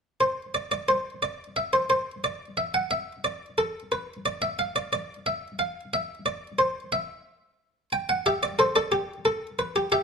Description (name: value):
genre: classical, baroque-style 3-part fugue for harpsichord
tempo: 60 BPM (dotted quarters)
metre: 12/8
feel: straight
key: unclear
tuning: A4 = 441 Hz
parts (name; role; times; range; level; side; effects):
- buff-stop harpsichord; solo; 0.2-10.0 s; G4 to G5; -24 LUFS; equal; none
room: moderate stone room reverb, RT60 1.0 s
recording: minimal, uncompressed stereo recording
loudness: -25 LUFS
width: side -5 dB against mid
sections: 0.0-10.0 A section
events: none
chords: 0.0 N.C.; 7.9 G5